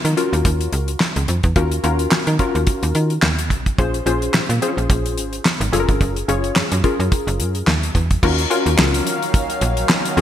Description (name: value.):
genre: early-eighties boogie funk.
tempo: 108 BPM.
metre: 4/4.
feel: swing 56% on 16ths.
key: Eb dorian.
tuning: A4 = 440 Hz.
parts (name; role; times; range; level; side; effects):
slap-like FM bass; bass; 0.0-10.2 s; Gb1 to Eb3; -20 LUFS; right 1 dB; none.
damped 70s drum kit; drums; 0.0-10.2 s; crash cymbal, handclaps, hi-hat, kick drum, snare drum; -19 LUFS; equal; gated reverb.
funky polysynth comp; accompaniment; 0.2-10.2 s; C4 to Db5; -22 LUFS; left 3 dB; chorus.
lush unison pad; sustained chords; 8.2-10.2 s; Eb3 to F5; -23 LUFS; equal; chorus, phaser.
room: moderate lush hall reverb, RT60 1.9 s, studio reverb.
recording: bright 1980s-style digital production.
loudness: -16 LUFS.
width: side -10 dB against mid.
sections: 0.0-8.2 A section; 8.2-10.2 B section.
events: none.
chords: 0.0 Ebm9; 3.8 Bbm7; 5.7 Gbmaj7; 8.2 Ebm9.